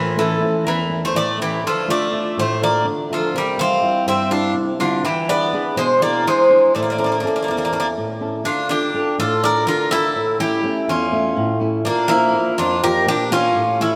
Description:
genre	greek folk, Greek bouzouki band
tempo	247 BPM (eighths)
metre	7/8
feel	straight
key	D harmonic minor from 8.5 s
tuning	A4 = 441 Hz
part	Greek bouzouki	melody	0.0-14.0 s	D4 to F5	-22 LUFS	equal	none
part	Greek bouzouki	second line	0.0-14.0 s	D3 to Bb4	-24 LUFS	equal	none
part	flamenco guitar	accompaniment	0.0-14.0 s	E2 to E5	-24 LUFS	equal	none
room	wet plate reverb, RT60 3.4 s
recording	heard from further back in the room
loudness	-19 LUFS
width	mono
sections	0.0-8.5 A section; 8.5-14.0 B section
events	none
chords	0.0 A; 1.6 Dm; 3.3 C; 5.0 E7; 6.8 A; 8.5 Dm; 10.2 A; 11.9 Bb

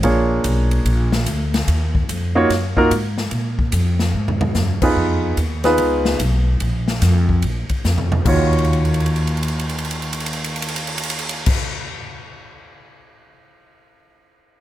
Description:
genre	jazz, big band swing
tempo	146 BPM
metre	4/4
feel	swing 65% on 8ths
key	Eb minor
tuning	A4 = 441 Hz
part	warm baby grand piano	accompaniment	0.0-11.5 s	Eb2 to C#5	-19 LUFS	right 1 dB	none
part	upright bass	bass	0.0-11.5 s	Bb1 to Bb2	-19 LUFS	equal	none
part	swinging big-band drum kit	drums	0.0-13.0 s	crash cymbal, hi-hat, kick drum, ride cymbal, snare drum, toms	-23 LUFS	left 1 dB	none
room	little or no reverb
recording	close, detailed microphones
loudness	-16 LUFS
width	side -13 dB against mid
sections	0.0-5.0 A section; 5.0-8.3 B section; 8.3-11.5 C section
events	drum fill 4.1-4.5, 7.8-8.3, 8.5-11.4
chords	0.0 Bb7#9; 1.7 Ebmadd9; 3.3 Bb5; 5.0 Fm7b5; 6.6 Bb5; 8.3 Ebm9

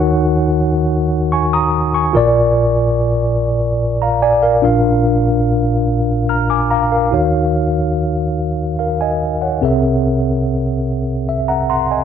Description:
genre	gospel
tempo	48 BPM (dotted quarters)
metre	6/8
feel	straight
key	Eb minor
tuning	A4 = 440 Hz
part	mellow tine electric piano	solo	0.0-12.0 s	Bb1 to F6	-13 LUFS	equal	medium stereo tremolo, slapback echo
room	light reverb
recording	dry, close 1970s-style studio recording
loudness	-13 LUFS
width	side -8 dB against mid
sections	0.0-4.6 A section; 4.6-7.1 B section; 7.1-12.0 C section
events	tine electric piano fill 10.9-12.0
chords	0.0 Ebm7; 2.1 Bb; 7.1 Ebm9; 9.6 Caug7

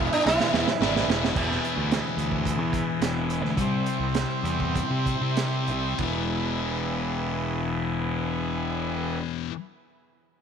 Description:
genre	psychedelic rock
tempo	93-111 BPM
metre	4/4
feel	straight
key	unclear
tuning	A4 = 440 Hz
part	sitar	melody	0.0-1.0 s	D4 to E4	-27 LUFS	right 2 dB	tape echo
part	combo organ	sustained chords	0.0-9.2 s	B3 to C5	-32 LUFS	right 12 dB	none
part	thick fuzz guitar	riff	0.0-9.5 s	E2 to C4	-29 LUFS	left 12 dB	distortion, phaser
part	fuzz fingered electric bass	bass	0.0-9.2 s	E1 to C3	-29 LUFS	equal	overdrive
part	crunchy breakbeat drum kit	drums	0.3-6.1 s	crash cymbal, hi-hat, kick drum, ride cymbal, snare drum	-29 LUFS	right 5 dB	none
room	light reverb, small room ambience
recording	1960s-style stereo with parts hard left and right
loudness	-24 LUFS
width	side -7 dB against mid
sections	0.0-1.3 A section; 1.3-6.0 B section; 6.0-10.4 C section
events	drum fill 0.3-1.3; slowing down 1.3-6.0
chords	0.0 E; 3.6 C; 6.0 E

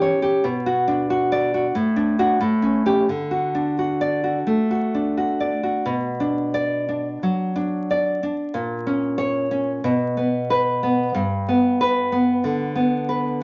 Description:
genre	romantic piece for solo classical guitar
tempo	85-95 BPM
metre	4/4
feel	rubato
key	D major, B minor from 5.9 s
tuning	A4 = 440 Hz
part	nylon-string guitar	solo	0.0-13.4 s	G2 to D5	-22 LUFS	equal	none
room	wet studio reverb, RT60 0.7 s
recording	vinyl crackle, nothing above 7.6 kHz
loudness	-22 LUFS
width	mono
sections	0.0-5.9 A section; 5.9-13.4 B section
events	none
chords	0.4 Bm; 1.7 D/A; 2.4 A7; 3.1 D; 5.9 Bm; 8.5 A#m; 9.8 N.C.; 11.1 G

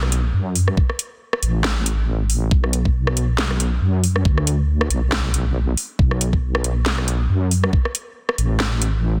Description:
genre	deep dubstep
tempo	138 BPM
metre	4/4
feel	swing 56% on 16ths, half-time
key	B minor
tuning	A4 = 440 Hz
part	deep soft wobble bass	bass	0.0-9.2 s	A1 to F#2	-21 LUFS	equal	chorus
part	garage drum kit	drums	0.0-8.9 s	hi-hat, rim click, snare drum	-26 LUFS	equal	none
part	electronic kick drum	drums	0.8-7.8 s	none	-20 LUFS	equal	none
room	light reverb, digital ambience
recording	dense, heavily limited modern master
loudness	-20 LUFS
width	mono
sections	0.0-9.2 A section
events	none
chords	none

